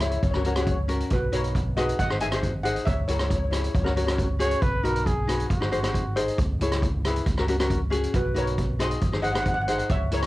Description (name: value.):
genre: calypso.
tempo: 137 BPM.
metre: 4/4.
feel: straight.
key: B major.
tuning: A4 = 439 Hz.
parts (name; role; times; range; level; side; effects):
steel pan; melody; 0.0-4.3, 8.2-10.3 s; F#4 to G#5; -29 LUFS; equal; cassette tape, analog delay.
ukulele; accompaniment; 0.0-10.3 s; C#4 to E5; -29 LUFS; left 2 dB; cassette tape.
fingered electric bass; bass; 0.0-10.3 s; G#1 to C#2; -28 LUFS; equal; none.
street-band drum kit; drums; 0.0-10.3 s; hi-hat, kick drum, rim click; -27 LUFS; equal; cassette tape.
breathy trumpet; second line; 4.4-6.3 s; F#4 to C#5; -28 LUFS; right 1 dB; cassette tape.
room: light reverb.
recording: home recording on cassette.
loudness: -22 LUFS.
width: side -18 dB against mid.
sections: 0.0-10.3 A section.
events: none.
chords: 0.2 F#/C#; 1.1 B; 2.0 G#; 2.9 C#m; 3.7 F#/C#; 4.6 B; 5.5 G#7; 6.4 C#m; 7.3 F#/C#; 8.1 B; 9.0 G#.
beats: 0.23 0.67 | 1.11 1.55 1.99 2.43 | 2.87 3.31 3.75 4.18 | 4.62 5.06 5.50 5.94 | 6.38 6.82 7.26 7.70 | 8.13 8.57 9.01 9.45 | 9.89.